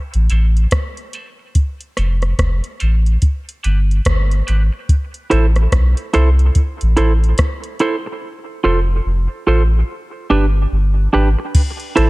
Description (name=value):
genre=dub reggae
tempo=72 BPM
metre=4/4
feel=swing 61% on 16ths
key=A minor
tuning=A4 = 441 Hz
part: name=soft dub sub bass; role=bass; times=0.1-12.1 s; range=F1 to C2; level=-14 LUFS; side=equal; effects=none
part: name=soft vintage rhythm box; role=drums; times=0.1-12.1 s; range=crash cymbal, hi-hat, kick drum, rim click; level=-17 LUFS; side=equal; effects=none
part: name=semi-hollow electric guitar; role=accompaniment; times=0.3-12.1 s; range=D4 to C5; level=-20 LUFS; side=right 3 dB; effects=high-pass filter, dub echo
room=digital ambience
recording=dark, warm production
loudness=-14 LUFS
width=side -21 dB against mid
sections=0.0-11.5 A section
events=part muted 8.2-11.5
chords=0.0 Am; 1.6 F; 3.2 G; 4.9 Am; 8.2 F; 9.9 G; 11.5 Am